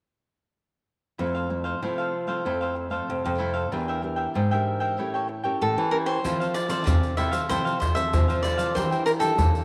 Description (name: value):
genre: samba and choro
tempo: 95 BPM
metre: 4/4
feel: straight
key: F major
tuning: A4 = 439 Hz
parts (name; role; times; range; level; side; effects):
- cavaquinho; accompaniment; 1.2-9.6 s; D4 to G5; -32 LUFS; equal; none
- nylon-string guitar; accompaniment; 1.2-9.6 s; C3 to Bb4; -37 LUFS; equal; none
- nylon-string guitar; bass; 1.2-9.6 s; E2 to Bb3; -31 LUFS; equal; none
- cavaquinho; melody; 5.6-9.6 s; A4 to E5; -29 LUFS; equal; none
- maracas, surdo and pandeiro; percussion; 6.2-9.6 s; none; -27 LUFS; equal; none
room: moderate echo chamber reverb, RT60 2.2 s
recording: none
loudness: -25 LUFS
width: mono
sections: 1.2-6.2 A section; 6.2-9.6 B section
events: none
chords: 1.2 Fmaj7; 3.7 Em7b5; 5.0 A7b9; 6.2 Fmaj7; 8.8 Em7b5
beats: | 1.19 1.82 2.46 3.09 | 3.72 4.35 4.98 5.61 | 6.24 6.87 7.50 8.13 | 8.76 9.39